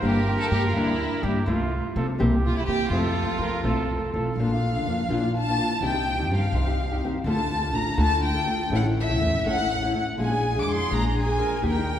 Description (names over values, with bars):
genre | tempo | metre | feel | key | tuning
mexican folk, mariachi | 83 BPM (dotted quarters) | 6/8 | rubato | F major, Bb major from 4.4 s | A4 = 440 Hz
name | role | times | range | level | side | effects
warm chamber violin section | melody | 0.0-12.0 s | E4 to D6 | -28 LUFS | left 1 dB | none
clear trumpet | second line | 0.0-4.4, 10.2-12.0 s | F4 to Bb4 | -31 LUFS | right 3 dB | none
nylon-string guitar | accompaniment | 0.0-11.9 s | F2 to A4 | -26 LUFS | left 1 dB | none
upright bass | bass | 0.0-12.0 s | G1 to F3 | -26 LUFS | equal | none
room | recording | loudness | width
wet church reverb, RT60 3.0 s | recorded in a church or concert hall | -22 LUFS | side -10 dB against mid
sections
0.0-4.4 A section; 4.4-12.0 B section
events
none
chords
0.0 Gm; 1.5 F/C; 2.2 C7; 2.9 F; 4.4 Bb; 5.8 Cm; 7.3 Dm; 8.7 A; 10.2 Bb7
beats
| 0.02 0.75 | 1.47 2.19 | 2.91 3.64 | 4.38 5.10 | 5.83 6.55 | 7.26 7.98 | 8.71 9.45 | 10.18 10.92 | 11.64